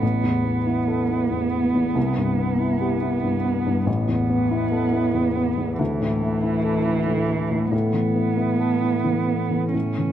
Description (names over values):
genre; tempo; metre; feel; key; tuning
neoclassical piano and strings; 93 BPM; 3/4; rubato; unclear; A4 = 440 Hz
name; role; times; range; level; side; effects
muted cello; second line; 0.0-10.1 s; E3 to C#4; -24 LUFS; right 5 dB; none
dark upright piano; accompaniment; 0.0-10.1 s; A1 to A4; -21 LUFS; left 2 dB; none
room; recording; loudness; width
moderate concert hall reverb, RT60 2.4 s; close, detailed microphones; -20 LUFS; side -10 dB against mid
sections
0.0-10.1 A section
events
none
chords
0.0 Asus2; 2.0 Cmaj7; 3.9 Asus2; 5.8 Dsus2; 7.7 Asus2